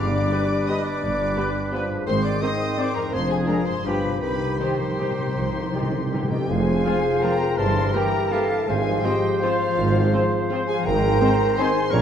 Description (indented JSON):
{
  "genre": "classical, orchestral ballroom waltz",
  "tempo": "151-183 BPM",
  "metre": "3/4",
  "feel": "rubato",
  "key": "C minor, F minor from 6.5 s",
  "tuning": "A4 = 441 Hz",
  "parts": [
    { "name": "warm studio violin section", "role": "melody", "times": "0.0-12.0 s", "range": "F5 to Eb6", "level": "-31 LUFS", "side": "left 5 dB", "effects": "none" },
    { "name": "clear oboe", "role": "second line", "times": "0.0-12.0 s", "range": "G4 to C5", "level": "-33 LUFS", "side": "right 2 dB", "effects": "none" },
    { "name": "concert flute", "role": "second line", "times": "0.0-12.0 s", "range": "Ab4 to Bb5", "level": "-30 LUFS", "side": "left 2 dB", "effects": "none" },
    { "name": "mellow clarinet", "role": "second line", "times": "0.0-12.0 s", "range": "C4 to Db5", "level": "-28 LUFS", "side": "right 1 dB", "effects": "none" },
    { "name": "rich studio violin section", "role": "second line", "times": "0.0-11.7 s", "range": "Bb3 to Eb5", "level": "-35 LUFS", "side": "left 4 dB", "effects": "none" },
    { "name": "mellow bassoon", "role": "accompaniment", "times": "0.0-12.0 s", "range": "Eb3 to G3", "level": "-30 LUFS", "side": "right 3 dB", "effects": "none" },
    { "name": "concert harp", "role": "arpeggios", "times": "0.0-12.0 s", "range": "F2 to F5", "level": "-28 LUFS", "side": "left 5 dB", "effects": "none" },
    { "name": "dark studio cello section", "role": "bass", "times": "0.0-12.0 s", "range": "F2 to G3", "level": "-30 LUFS", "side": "right 2 dB", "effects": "none" },
    { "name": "warm studio double bass section", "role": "bass", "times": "0.0-12.0 s", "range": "F1 to C2", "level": "-28 LUFS", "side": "right 2 dB", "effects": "none" },
    { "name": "timpani", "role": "percussion", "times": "0.0-0.5, 4.2-6.4 s", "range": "G2 to C3", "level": "-30 LUFS", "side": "equal", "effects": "none" },
    { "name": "rich studio viola section", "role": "accompaniment", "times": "0.3-11.7 s", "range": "E3 to G4", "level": "-33 LUFS", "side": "right 1 dB", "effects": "none" },
    { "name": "mellow French horn section", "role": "sustained chords", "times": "0.3-11.7 s", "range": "Eb3 to Eb4", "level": "-34 LUFS", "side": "left 3 dB", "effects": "none" },
    { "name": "warm trumpet section", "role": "stabs", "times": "0.3-11.7 s", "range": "F4 to C5", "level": "-33 LUFS", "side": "right 1 dB", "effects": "none" },
    { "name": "warm tuba", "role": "bass", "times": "6.5-12.0 s", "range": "F1 to Bb1", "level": "-31 LUFS", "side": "right 3 dB", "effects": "none" }
  ],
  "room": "wet scoring stage reverb, RT60 1.8 s",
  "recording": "none",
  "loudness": "-20 LUFS",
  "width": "side -8 dB against mid",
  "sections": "0.0-6.5 A section; 6.5-12.0 B section",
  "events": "timpani fill 4.2-6.5",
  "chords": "0.0 G; 2.1 Ab; 3.1 Dm7b5/F; 3.9 G7; 4.2 Cm; 6.5 Fm; 7.6 Edim/G; 8.7 Fm/Ab; 10.9 Ab"
}